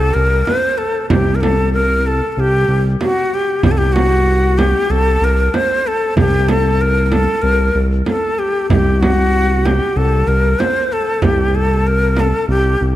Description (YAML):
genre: Arabic maqam ensemble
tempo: 95 BPM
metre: 4/4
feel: straight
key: unclear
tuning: A4 = 442 Hz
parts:
  - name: breathy bright ney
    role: melody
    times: 0.0-12.8 s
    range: F#4 to C5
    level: -16 LUFS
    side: left 1 dB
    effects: none
  - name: smooth synth bass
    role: bass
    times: 0.0-13.0 s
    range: C2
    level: -16 LUFS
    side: equal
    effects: none
  - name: frame drum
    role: percussion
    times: 0.5-12.3 s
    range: none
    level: -20 LUFS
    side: right 2 dB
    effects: none
room: moderate concert hall reverb, RT60 2.6 s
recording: dark, warm production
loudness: -12 LUFS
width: side -14 dB against mid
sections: 0.0-13.0 A section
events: none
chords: none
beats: 0.48 | 1.11 1.74 2.37 3.01 | 3.64 4.27 4.90 5.53 | 6.17 6.80 7.43 8.06 | 8.69 9.33 9.96 10.59 | 11.22 11.85 12.49